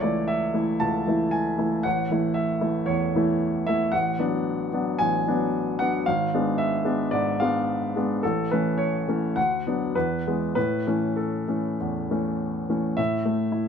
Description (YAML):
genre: classical, romantic character piece for solo piano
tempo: 96-120 BPM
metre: 4/4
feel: rubato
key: A major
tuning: A4 = 441 Hz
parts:
  - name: clear baby grand piano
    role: solo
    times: 0.0-13.7 s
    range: G#1 to A5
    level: -22 LUFS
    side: equal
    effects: none
room: light reverb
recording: minimal, uncompressed stereo recording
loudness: -22 LUFS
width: side -7 dB against mid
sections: 0.0-13.0 A section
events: none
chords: 0.0 A/C#; 1.8 A; 3.9 Bm7/A; 6.0 G#dim7; 8.2 A; 9.4 Bm/D; 9.9 E; 10.6 A; 13.0 A5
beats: 0.29 0.82 1.34 | 1.85 2.37 2.88 3.40 | 3.92 4.45 4.98 5.52 | 6.04 6.57 7.12 7.67 | 8.22 8.78 9.36 9.94 | 10.55 11.17 11.79 12.39 | 12.98 13.52